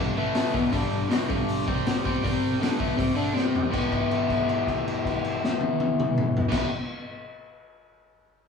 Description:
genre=garage rock duo or trio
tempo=160 BPM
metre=4/4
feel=straight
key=E minor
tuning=A4 = 435 Hz
part: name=overdriven electric guitar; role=riff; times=0.0-6.7 s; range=E2 to G4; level=-25 LUFS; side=left 2 dB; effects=none
part: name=crunchy breakbeat drum kit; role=drums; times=0.3-6.6 s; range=crash cymbal, hi-hat, kick drum, snare drum, toms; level=-27 LUFS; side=left 1 dB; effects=none
room=moderate small room reverb, RT60 0.5 s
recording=band playing live in one room, small room reverb, faint mains hum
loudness=-23 LUFS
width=side -6 dB against mid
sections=0.0-3.7 A section; 3.7-6.7 B section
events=drum fill 3.4-3.7; held note 3.7-6.5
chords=0.2 A5; 0.5 E5; 0.7 G5; 1.7 C5; 2.6 G5; 3.4 C5; 3.7 Em

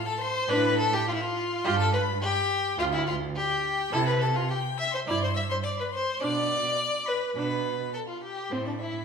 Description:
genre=quick classical-period movement for string quartet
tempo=105 BPM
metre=4/4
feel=straight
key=C major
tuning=A4 = 441 Hz
part: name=rich violin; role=melody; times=0.0-9.0 s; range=C5 to E6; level=-34 LUFS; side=left 6 dB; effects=none
part: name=warm violin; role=second line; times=0.1-9.0 s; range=C4 to E5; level=-27 LUFS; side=left 2 dB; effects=none
part: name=warm viola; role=accompaniment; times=0.5-8.8 s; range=C4 to F4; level=-32 LUFS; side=right 4 dB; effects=none
part: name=rich cello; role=bass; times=0.5-9.0 s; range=D2 to C3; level=-32 LUFS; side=right 4 dB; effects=none
room=wet recital hall reverb, RT60 1.5 s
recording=minimal, uncompressed stereo recording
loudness=-25 LUFS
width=side -6 dB against mid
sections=0.0-9.0 A section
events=none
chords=0.5 Dm/A; 1.6 G5; 3.9 C; 6.2 Bm; 8.5 Am

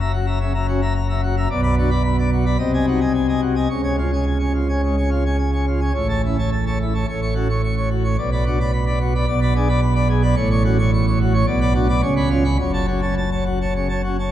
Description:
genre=classical, organ toccata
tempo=108 BPM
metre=4/4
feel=straight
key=F# minor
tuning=A4 = 442 Hz
part: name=pipe organ, plenum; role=solo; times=0.0-14.3 s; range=F#1 to C#6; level=-17 LUFS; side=equal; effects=none
room=wet cathedral reverb, RT60 4.8 s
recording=dark, warm production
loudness=-17 LUFS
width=side -12 dB against mid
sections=0.0-14.3 A section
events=none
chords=0.0 F#7; 1.5 Bm; 2.6 G#7/B#; 3.7 C#; 6.0 A; 7.1 F#m/A; 8.2 Bm; 9.3 G#dim/B; 10.4 F#m/A; 11.5 Bm; 12.0 C#7; 12.6 F#m

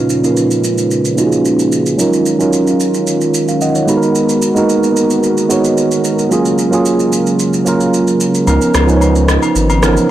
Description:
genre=amapiano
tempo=111 BPM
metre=4/4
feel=straight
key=G# dorian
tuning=A4 = 440 Hz
part: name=mellow tine electric piano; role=accompaniment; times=0.0-10.1 s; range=A#2 to B5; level=-12 LUFS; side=right 2 dB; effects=low-pass filter
part: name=warm analog pad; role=sustained chords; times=0.0-10.1 s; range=C#3 to A#4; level=-19 LUFS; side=left 2 dB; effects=chorus, low-pass filter
part: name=electronic shaker and rim click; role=drums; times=0.1-10.1 s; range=none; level=-21 LUFS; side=right 1 dB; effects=soft clipping on snare
part: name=saturated sub bass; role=bass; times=8.5-10.0 s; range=G#1 to C#2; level=-14 LUFS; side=left 1 dB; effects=none
part: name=agogo bells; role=percussion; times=8.5-9.8 s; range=none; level=-22 LUFS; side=left 5 dB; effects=none
room=light reverb, digital ambience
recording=blown-out, overdriven recording, overdrive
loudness=-10 LUFS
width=side -12 dB against mid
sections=0.0-10.1 A section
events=filter sweep 0.0-10.1; tine electric piano fill 3.3-4.2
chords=0.0 C#13; 2.0 D#m9; 3.9 G#m9; 6.3 F#maj9; 8.5 C#13

